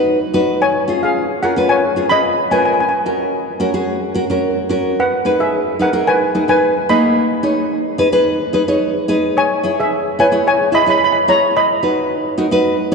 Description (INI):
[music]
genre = calypso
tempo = 110 BPM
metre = 4/4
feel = straight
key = unclear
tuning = A4 = 441 Hz
[part]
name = nylon-string guitar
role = accompaniment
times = 0.0-12.9 s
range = A#3 to E5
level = -16 LUFS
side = equal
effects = none
[part]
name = steel pan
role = melody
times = 0.6-12.9 s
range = G#4 to B5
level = -16 LUFS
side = equal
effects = none
[sound]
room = wet cathedral reverb, RT60 4.4 s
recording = recorded in a church or concert hall, nothing above 10.7 kHz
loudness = -13 LUFS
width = side -4 dB against mid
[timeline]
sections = 0.0-12.9 A section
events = none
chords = 0.0 B; 0.6 C#; 2.8 F#; 5.0 G#m; 9.4 C#m; 11.5 B